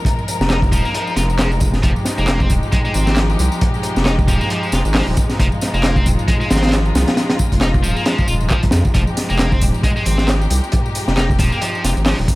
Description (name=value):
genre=breakbeat, breaks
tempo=135 BPM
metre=4/4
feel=swing 57% on 16ths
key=unclear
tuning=A4 = 440 Hz
part: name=rich studio string section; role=sustained chords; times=0.0-12.4 s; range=F3 to Bb4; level=-24 LUFS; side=left 1 dB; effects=vintage 12-bit sampler grit, sidechain pumping
part: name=crunchy breakbeat drum kit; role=drums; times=0.0-12.4 s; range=hi-hat, kick drum, snare drum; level=-17 LUFS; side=equal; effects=none
part: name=punchy analog drum machine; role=drums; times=0.1-12.4 s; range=handclaps, hi-hat, tambourine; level=-27 LUFS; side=equal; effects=none
part: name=saturated sub bass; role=bass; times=0.4-12.3 s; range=Eb1 to F2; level=-18 LUFS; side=equal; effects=none
part: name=tight distorted guitar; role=riff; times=0.5-12.2 s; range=F3 to F4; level=-24 LUFS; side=equal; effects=distortion, vintage 12-bit sampler grit, tape echo
room=small room ambience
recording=vinyl crackle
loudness=-14 LUFS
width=side -19 dB against mid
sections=0.0-12.4 A section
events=none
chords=0.0 Fm9